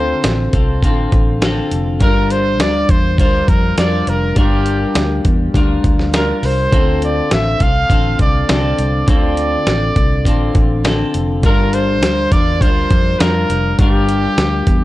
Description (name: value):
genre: indie pop, bedroom pop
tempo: 102 BPM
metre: 4/4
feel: straight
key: G minor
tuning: A4 = 442 Hz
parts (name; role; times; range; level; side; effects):
- bright trumpet; melody; 0.0-14.8 s; G4 to F5; -19 LUFS; right 1 dB; wide subtle chorus, analog delay
- clean electric guitar; accompaniment; 0.0-14.8 s; D3 to Bb4; -19 LUFS; left 2 dB; wide subtle chorus, vibrato effect
- vintage muted fingered electric bass; bass; 0.0-14.8 s; F1 to F2; -19 LUFS; equal; none
- dusty soul sampler-style drum kit; drums; 0.2-14.8 s; hi-hat, kick drum, snare drum; -15 LUFS; equal; none
room: little or no reverb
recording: dry, gritty hardware recording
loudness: -12 LUFS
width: side -16 dB against mid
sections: 0.0-14.8 A section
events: none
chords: 0.0 Dm7; 2.0 Gm7; 6.7 Dm7; 11.4 Gm7